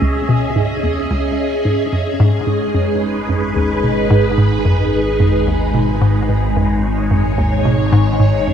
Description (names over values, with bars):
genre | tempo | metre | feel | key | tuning
ambient, sequencer-driven space music | 110 BPM | 4/4 | straight | unclear | A4 = 440 Hz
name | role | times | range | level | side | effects
phased string machine | sustained chords | 0.0-8.5 s | G#3 to E5 | -17 LUFS | equal | ensemble chorus, phaser, shimmer reverb
hollow square pluck | riff | 0.0-8.5 s | C#2 to B2 | -16 LUFS | equal | chorus, ping-pong delay
fat analog bass | bass | 0.0-8.5 s | G#1 to C#2 | -22 LUFS | equal | none
room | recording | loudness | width
moderate spring reverb, RT60 2.6 s | echo-heavy mix | -13 LUFS | side -8 dB against mid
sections
0.0-8.5 A section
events
fade-in on analog synth bass 0.0-8.5; filter sweep on synth arpeggio sound 0.0-8.5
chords
0.0 C#m; 2.2 G#m